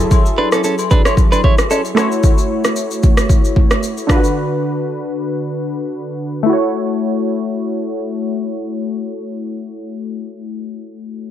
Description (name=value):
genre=afrobeats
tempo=113 BPM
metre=4/4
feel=swing 55% on 16ths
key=A major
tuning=A4 = 440 Hz
part: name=warm analog keys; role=accompaniment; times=0.0-11.3 s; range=D3 to C#5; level=-19 LUFS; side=left 1 dB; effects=chorus, low-pass filter
part: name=afro-pop drum kit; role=drums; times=0.1-4.3 s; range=kick drum, rim click, shaker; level=-13 LUFS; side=equal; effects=overdrive
part: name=agogo bells and woodblock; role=percussion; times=0.1-2.1 s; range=none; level=-24 LUFS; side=left 10 dB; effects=none
part: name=direct-recorded clean electric guitar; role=riff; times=0.4-2.1 s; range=C#4 to C#5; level=-19 LUFS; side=right 4 dB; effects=low-pass filter, tape echo
room=little or no reverb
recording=none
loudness=-14 LUFS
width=side -11 dB against mid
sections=0.0-6.5 A section; 6.5-10.7 B section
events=filter sweep 0.0-6.5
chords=0.0 F#m9; 2.0 A6; 4.1 D6; 6.5 A6